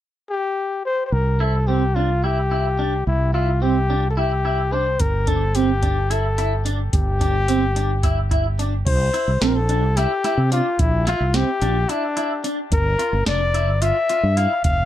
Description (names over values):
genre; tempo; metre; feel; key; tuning
progressive instrumental, band music in an uneven meter; 218 BPM (eighths); 7/8; straight; unclear; A4 = 440 Hz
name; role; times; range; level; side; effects
warm trumpet; melody; 0.3-14.9 s; D4 to F5; -22 LUFS; left 3 dB; ping-pong delay
fretless electric bass; bass; 1.1-14.9 s; F1 to C3; -20 LUFS; right 1 dB; none
clean electric guitar; arpeggios; 1.4-14.5 s; C4 to F4; -25 LUFS; right 3 dB; ensemble chorus
soft vintage rhythm box; drums; 5.0-14.8 s; crash cymbal, hi-hat, kick drum, snare drum; -23 LUFS; equal; none
room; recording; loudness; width
light reverb; none; -18 LUFS; side -12 dB against mid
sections
0.0-1.1 A section; 1.1-8.9 B section; 8.9-14.9 C section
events
none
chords
0.0 N.C.; 1.1 C; 5.0 G5; 8.9 C7; 12.7 Gm7